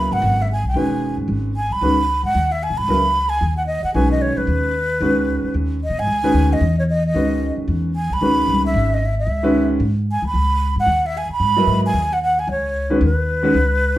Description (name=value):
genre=modal jazz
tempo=225 BPM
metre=4/4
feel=swing 59% on 8ths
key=C# dorian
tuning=A4 = 441 Hz
part: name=breathy mellow silver concert flute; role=melody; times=0.0-14.0 s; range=B4 to B5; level=-20 LUFS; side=right 1 dB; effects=none
part: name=warm concert grand piano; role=accompaniment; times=0.0-14.0 s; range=C#3 to D#5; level=-20 LUFS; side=equal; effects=none
part: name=upright bass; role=bass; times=0.0-14.0 s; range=E1 to B2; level=-20 LUFS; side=equal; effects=none
room=wet studio reverb, RT60 0.6 s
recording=heard from further back in the room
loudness=-16 LUFS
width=side -14 dB against mid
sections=0.0-14.0 A section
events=none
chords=0.0 C#m9; 1.8 G#m/C#; 6.1 C#m9; 10.3 G#m/C#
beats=0.23 0.49 | 0.76 1.02 1.29 1.56 | 1.82 2.09 2.35 2.62 | 2.88 3.15 3.42 3.68 | 3.95 4.22 4.48 4.75 | 5.01 5.28 5.55 5.81 | 6.08 6.35 6.61 6.88 | 7.15 7.41 7.68 7.95 | 8.21 8.48 8.75 9.01 | 9.28 9.55 9.81 10.08 | 10.35 10.61 10.88 11.14 | 11.41 11.68 11.94 12.21 | 12.48 12.74 13.01 13.28 | 13.54 13.81